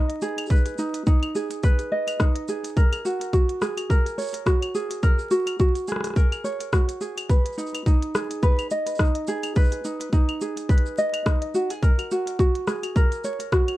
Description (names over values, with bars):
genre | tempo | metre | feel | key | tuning
folktronica | 106 BPM | 4/4 | swing 56% on 16ths | G# minor | A4 = 440 Hz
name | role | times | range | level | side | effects
ukulele | arpeggios | 0.0-13.8 s | D#4 to D#5 | -25 LUFS | right 1 dB | ping-pong delay
organic electronic drum kit | drums | 0.1-13.8 s | cabasa, claves, hi-hat, rim click | -31 LUFS | left 1 dB | none
electronic kick drum | drums | 0.5-13.6 s | none | -19 LUFS | equal | none
room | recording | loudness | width
light reverb | dark, warm production, vinyl crackle | -21 LUFS | side -16 dB against mid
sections
0.0-13.8 A section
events
none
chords
0.0 G#m; 2.8 F#add9; 7.3 G#m; 11.8 F#add9